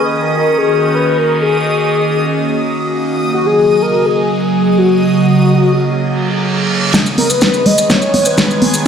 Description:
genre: progressive house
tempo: 125 BPM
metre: 4/4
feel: straight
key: G# minor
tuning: A4 = 440 Hz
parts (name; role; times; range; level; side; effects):
- warm velvety synth lead; melody; 0.0-8.6 s; F#4 to D#5; -15 LUFS; left 2 dB; chorus, cassette tape, sidechain pumping, digital delay
- evolving wavetable pad; sustained chords; 0.0-8.9 s; C#3 to G#4; -15 LUFS; right 2 dB; phaser, built-in reverb, sidechain pumping
- backwards swelling texture; texture; 0.0-8.9 s; D#5 to G#6; -22 LUFS; right 1 dB; built-in reverb, sidechain pumping
- reverse cymbal; sound effects; 6.1-6.9 s; none; -20 LUFS; right 5 dB; none
- soft round pluck; arpeggios; 6.9-8.7 s; G#3 to B3; -15 LUFS; equal; chorus, sidechain pumping, digital delay
- electronic kick drum; drums; 6.9-8.5 s; none; -22 LUFS; equal; overdrive, high-pass filter on kick, studio ambience
- pop drum kit; drums; 6.9-8.7 s; hi-hat, snare drum; -15 LUFS; equal; studio ambience
- maracas; percussion; 6.9-8.8 s; none; -20 LUFS; left 1 dB; none
room: wet lush hall reverb, RT60 2.7 s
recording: played on a big sound system in a bare room, large studio reverb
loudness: -10 LUFS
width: side -7 dB against mid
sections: 0.0-6.9 A section; 6.9-8.9 B section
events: reverse cymbal 6.1-6.9; build-up 6.9-8.9; drum fill 6.9-8.9; filter sweep on synth pluck 6.9-8.9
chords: 0.0 D#m7; 3.1 F#; 6.9 G#m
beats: 0.22 0.70 | 1.18 1.66 2.14 2.62 | 3.10 3.58 4.06 4.54 | 5.02 5.50 5.98 6.46 | 6.94 7.42 7.90 8.38 | 8.86

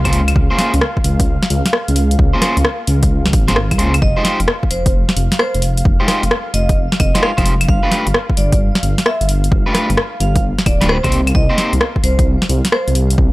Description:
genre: UK garage, two-step garage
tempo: 131 BPM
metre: 4/4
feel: swing 67% on 16ths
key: unclear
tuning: A4 = 440 Hz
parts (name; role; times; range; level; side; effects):
- warm analog pad; sustained chords; 0.0-13.3 s; F5; -29 LUFS; equal; wide subtle chorus, sidechain pumping
- electric guitar at the edge of break-up; stabs; 0.0-11.7 s; Ab3 to C5; -20 LUFS; equal; analog delay
- dark detuned saw bass; bass; 0.0-13.3 s; D1 to Db2; -16 LUFS; equal; none
- electronic kick drum; drums; 0.1-13.3 s; none; -16 LUFS; equal; overdrive
- punchy analog drum machine; drums; 0.1-13.2 s; claves, hi-hat, rim click, snare drum; -18 LUFS; equal; overdrive
- vibraphone with hard mallets; melody; 4.0-12.9 s; C5 to F5; -23 LUFS; right 1 dB; tape echo
room: little or no reverb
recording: dry, gritty hardware recording, transformer saturation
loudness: -12 LUFS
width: side -19 dB against mid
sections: 0.0-13.3 A section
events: none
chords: 0.1 Bbm9/Db; 4.0 Fm7; 7.7 G7; 11.1 N.C.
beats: | 0.36 0.81 1.27 1.73 | 2.19 2.65 3.10 3.56 | 4.02 4.48 4.94 5.39 | 5.85 6.31 6.77 7.23 | 7.68 8.14 8.60 9.06 | 9.52 9.97 10.43 10.89 | 11.35 11.81 12.27 12.72 | 13.18

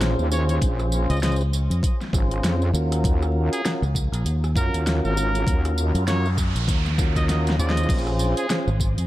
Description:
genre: glitch hop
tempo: 99 BPM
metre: 4/4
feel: swing 58% on 16ths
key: Bb minor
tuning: A4 = 437 Hz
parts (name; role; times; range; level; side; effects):
- tonewheel organ; stabs; 0.0-8.7 s; Db4 to C5; -27 LUFS; equal; overdrive, slow rotary speaker, sidechain pumping, diffuse ambient delay
- wobble bass; bass; 0.0-8.3 s; Ab1 to Gb2; -22 LUFS; equal; chorus
- pop drum kit; drums; 0.0-9.1 s; crash cymbal, hi-hat, rim click, snare drum, tambourine; -29 LUFS; equal; overdrive
- bright trumpet; melody; 0.3-8.6 s; Ab4 to Eb5; -32 LUFS; right 1 dB; diffuse ambient delay
- electronic kick drum; drums; 0.6-8.9 s; none; -23 LUFS; equal; overdrive
- fingered electric bass; bass; 1.1-9.1 s; Ab1 to Gb2; -22 LUFS; equal; none
- noise sweep; sound effects; 5.8-7.9 s; none; -34 LUFS; right 3 dB; none
room: light reverb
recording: vinyl crackle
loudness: -20 LUFS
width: side -15 dB against mid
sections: 0.0-9.1 A section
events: noise sweep 5.8-7.9; drum fill 7.3-7.9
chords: 0.0 Bbm7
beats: 0.01 | 0.62 1.23 1.83 2.44 | 3.04 3.65 4.26 4.86 | 5.47 6.08 6.68 7.29 | 7.89 8.50

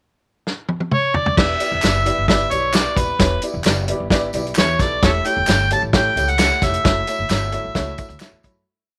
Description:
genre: uptempo 1960s-style soul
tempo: 131 BPM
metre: 4/4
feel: straight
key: E dorian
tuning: A4 = 439 Hz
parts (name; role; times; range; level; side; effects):
- warm soul drum kit; drums; 0.5-8.6 s; crash cymbal, hi-hat, kick drum, snare drum, toms; -21 LUFS; equal; none
- overdriven harmonica; melody; 0.9-8.2 s; A4 to A5; -22 LUFS; equal; none
- warm upright piano; accompaniment; 1.4-8.7 s; A3 to B5; -27 LUFS; equal; none
- upright bass; bass; 1.4-8.6 s; D#1 to F#2; -26 LUFS; equal; none
- tambourine and handclaps; percussion; 1.6-8.5 s; none; -32 LUFS; equal; none
room: light reverb, studio ambience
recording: none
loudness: -18 LUFS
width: mono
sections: 0.0-1.4 pickup bar; 1.4-8.7 verse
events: drum fill 0.5-1.4; fade-out 6.9-8.7; upright piano fill 7.8-8.7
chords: 0.0 N.C.; 1.4 Em7; 5.0 A7/E; 6.9 F#m7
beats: 0.00 0.46 0.91 | 1.37 1.83 2.29 2.74 | 3.20 3.66 4.11 4.57 | 5.03 5.48 5.94 6.40 | 6.85 7.31 7.76 8.22

